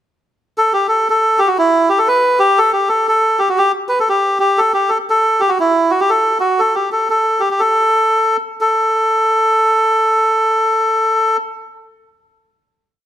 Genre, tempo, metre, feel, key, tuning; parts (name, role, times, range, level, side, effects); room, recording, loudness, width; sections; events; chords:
celtic folk; 119 BPM; 2/4; swing 61% on 8ths; A4 = 442 Hz
melodica; solo; 0.6-11.4 s; E4 to B4; -12 LUFS; equal
light reverb; -12 LUFS; side -11 dB against mid
0.6-8.6 A section; 8.6-10.6 final note